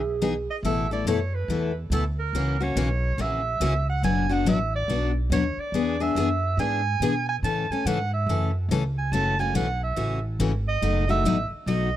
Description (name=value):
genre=acoustic string swing (jazz manouche)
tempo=141 BPM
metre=4/4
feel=swing 63% on 8ths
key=A major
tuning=A4 = 436 Hz
part: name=bright clarinet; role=melody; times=0.0-12.0 s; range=A4 to A5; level=-28 LUFS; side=right 4 dB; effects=none
part: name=breathy clarinet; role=second line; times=0.0-0.6 s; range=G#4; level=-30 LUFS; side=right 6 dB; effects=slapback echo
part: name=upright bass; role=bass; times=0.0-12.0 s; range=F#1 to B2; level=-27 LUFS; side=right 1 dB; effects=none
part: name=picked steel-string acoustic guitar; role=accompaniment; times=0.2-11.9 s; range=B2 to A4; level=-26 LUFS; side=left 5 dB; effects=none
room=small room ambience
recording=dry, close 1970s-style studio recording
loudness=-22 LUFS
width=side -12 dB against mid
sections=0.6-12.0 A section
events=none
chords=0.0 Emaj7; 0.6 Asus2; 2.3 F#7; 4.0 Bm/F#; 5.7 E7; 7.4 A; 9.1 F#m7; 10.8 B7/F#